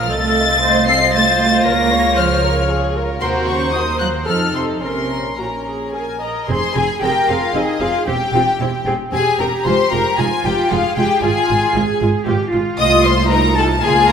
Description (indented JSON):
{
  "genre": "quick classical-period movement for string orchestra",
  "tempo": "115 BPM",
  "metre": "3/4",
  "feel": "rubato",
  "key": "Bb minor, F minor from 6.5 s",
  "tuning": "A4 = 441 Hz",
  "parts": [
    { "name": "warm symphonic violin section", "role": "melody", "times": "0.0-14.1 s", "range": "Eb5 to C7", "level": "-19 LUFS", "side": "left 5 dB", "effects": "none" },
    { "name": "warm studio violin section", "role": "second line", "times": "0.0-14.1 s", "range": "Db4 to Eb5", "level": "-20 LUFS", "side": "left 2 dB", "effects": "none" },
    { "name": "dark chamber viola section", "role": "accompaniment", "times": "0.0-14.1 s", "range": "Ab3 to Eb5", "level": "-22 LUFS", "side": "right 2 dB", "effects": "none" },
    { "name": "dark studio double bass section", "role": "bass", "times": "0.0-14.1 s", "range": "E1 to F2", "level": "-22 LUFS", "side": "right 3 dB", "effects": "none" },
    { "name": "warm symphonic cello section", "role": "bass", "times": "0.0-14.1 s", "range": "Bb2 to Bb4", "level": "-22 LUFS", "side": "right 3 dB", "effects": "none" }
  ],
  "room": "moderate concert hall reverb, RT60 2.2 s",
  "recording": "none",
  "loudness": "-14 LUFS",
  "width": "side -7 dB against mid",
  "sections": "0.0-6.5 A section; 6.5-14.1 B section",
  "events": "none",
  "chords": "0.1 F7/C; 1.7 Bbm/Db; 3.2 Cm7b5/Eb; 4.3 F7; 4.8 Bbm; 6.5 Fm; 8.1 C/E; 9.7 Fm; 11.2 Fm/Ab; 12.8 F7/C"
}